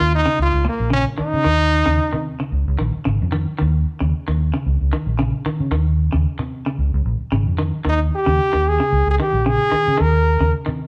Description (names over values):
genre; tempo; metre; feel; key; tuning
afrobeat; 113 BPM; 4/4; swing 54% on 16ths; unclear; A4 = 436 Hz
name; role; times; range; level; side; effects
brilliant trombone; melody; 0.0-2.2, 7.9-10.5 s; Bb3 to Bb4; -21 LUFS; equal; none
semi-hollow electric guitar; arpeggios; 0.0-10.9 s; Bb2 to Eb3; -27 LUFS; equal; tremolo
vintage muted fingered electric bass; bass; 0.0-10.9 s; Ab1 to Db3; -21 LUFS; equal; none
room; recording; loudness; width
moderate large studio reverb, RT60 1.4 s; band playing live in one room; -19 LUFS; mono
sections
0.0-10.9 A section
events
none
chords
0.4 Bbmadd11; 1.5 Cm/Eb; 2.5 Db; 3.6 Dbsus2/Eb; 4.7 Bbmadd11; 5.7 Cm/Eb; 6.8 Db6; 7.9 Eb7; 8.9 Db5; 10.0 Eb5